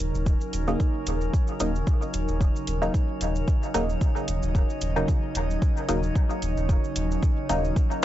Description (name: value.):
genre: dub techno.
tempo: 112 BPM.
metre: 4/4.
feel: swing 55% on 16ths.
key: Eb minor.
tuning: A4 = 440 Hz.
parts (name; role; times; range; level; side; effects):
airy breathy pad; sustained chords; 0.0-8.0 s; Db3 to Eb5; -33 LUFS; equal; chorus, sidechain pumping.
round analog bass; bass; 0.0-7.7 s; Eb1; -28 LUFS; equal; tube saturation, sidechain pumping.
drifting glass-harmonics texture; texture; 0.0-8.0 s; Db4 to Db5; -37 LUFS; right 3 dB; chorus, built-in reverb, sidechain pumping.
maracas; percussion; 0.1-8.0 s; none; -42 LUFS; right 3 dB; none.
electronic kick drum; drums; 0.3-7.9 s; none; -23 LUFS; equal; none.
electronic hi-hat; drums; 0.5-7.6 s; none; -36 LUFS; equal; none.
filtered dub chord stab; stabs; 0.7-7.6 s; Db3 to Eb4; -30 LUFS; equal; chorus, phaser, sidechain pumping, dub echo.
room: little or no reverb.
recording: dry, gritty hardware recording, nothing above 7.8 kHz.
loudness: -23 LUFS.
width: side -13 dB against mid.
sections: 0.0-8.0 A section.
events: none.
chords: 0.0 Ebm7.